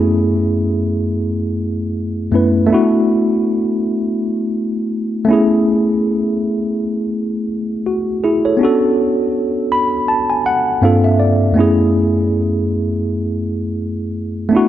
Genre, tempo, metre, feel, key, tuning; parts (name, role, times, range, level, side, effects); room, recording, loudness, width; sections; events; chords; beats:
soul; 81 BPM; 4/4; swing 58% on 16ths; F# minor; A4 = 440 Hz
mellow tine electric piano; solo; 0.0-14.7 s; F#2 to B5; -14 LUFS; equal; medium stereo tremolo
moderate plate reverb, RT60 3.0 s; dark, warm production; -14 LUFS; side -12 dB against mid
0.0-14.7 A section
tine electric piano fill 9.3-11.6
0.0 F#m11; 2.7 E7sus4; 5.3 Amaj9; 8.6 Bm7; 10.8 Gm11; 11.6 F#m11
0.48 1.22 1.96 | 2.69 3.43 4.17 4.91 | 5.65 6.39 7.13 7.87 | 8.61 9.35 10.09 10.82 | 11.56 12.30 13.04 13.78 | 14.52